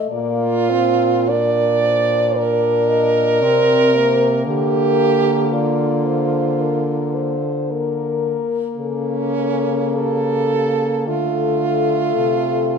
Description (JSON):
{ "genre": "classical, lyrical piece for horn quartet", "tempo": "56 BPM", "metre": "4/4", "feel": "rubato", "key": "Bb major", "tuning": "A4 = 441 Hz", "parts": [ { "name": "dark French horn", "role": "melody", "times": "0.0-12.8 s", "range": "G4 to Eb5", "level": "-23 LUFS", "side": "left 8 dB", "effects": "none" }, { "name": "warm French horn", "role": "accompaniment", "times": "0.0-12.8 s", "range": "A3 to D4", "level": "-23 LUFS", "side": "left 5 dB", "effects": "none" }, { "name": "mellow French horn", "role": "second line", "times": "0.1-12.8 s", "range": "C#4 to D5", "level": "-18 LUFS", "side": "right 4 dB", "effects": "none" }, { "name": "mellow French horn", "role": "bass", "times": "0.1-12.8 s", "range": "Bb2 to D3", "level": "-23 LUFS", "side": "right 1 dB", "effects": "none" } ], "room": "moderate recital hall reverb, RT60 1.7 s", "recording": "minimal, uncompressed stereo recording", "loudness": "-15 LUFS", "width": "side -6 dB against mid", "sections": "0.0-12.8 A section", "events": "none", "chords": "0.1 Bb; 4.5 Bb/D; 8.8 A/C#; 11.1 Dm", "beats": "| 0.11 1.28 2.36 3.43 | 4.48 5.54 6.59 7.68 | 8.77 9.96 11.06 12.16" }